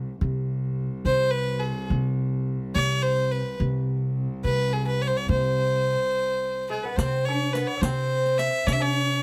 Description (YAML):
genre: Persian modal ensemble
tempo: 71 BPM (dotted quarters)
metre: 6/8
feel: straight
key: C dastgah chahargah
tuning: A4 = 440 Hz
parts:
  - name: warm cello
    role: drone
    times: 0.0-7.0 s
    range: C2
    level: -36 LUFS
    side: equal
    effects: none
  - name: upright bass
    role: bass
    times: 0.2-9.2 s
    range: C3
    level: -28 LUFS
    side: equal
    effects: none
  - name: clear violin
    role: melody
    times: 1.1-9.2 s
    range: Ab4+41c to E5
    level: -27 LUFS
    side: equal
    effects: plate reverb
  - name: lute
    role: second line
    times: 6.7-9.2 s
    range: Ab3+45c to Db4+45c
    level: -32 LUFS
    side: equal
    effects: none
  - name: riq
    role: percussion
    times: 7.0-8.8 s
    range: none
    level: -33 LUFS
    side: equal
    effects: none
room: light reverb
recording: none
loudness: -25 LUFS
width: mono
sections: 0.0-7.0 A section; 7.0-9.2 B section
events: break 6.1-7.0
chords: none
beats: | 0.22 1.06 | 1.91 2.76 | 3.60 4.45 | 5.29 6.14 | 6.98 7.82 | 8.67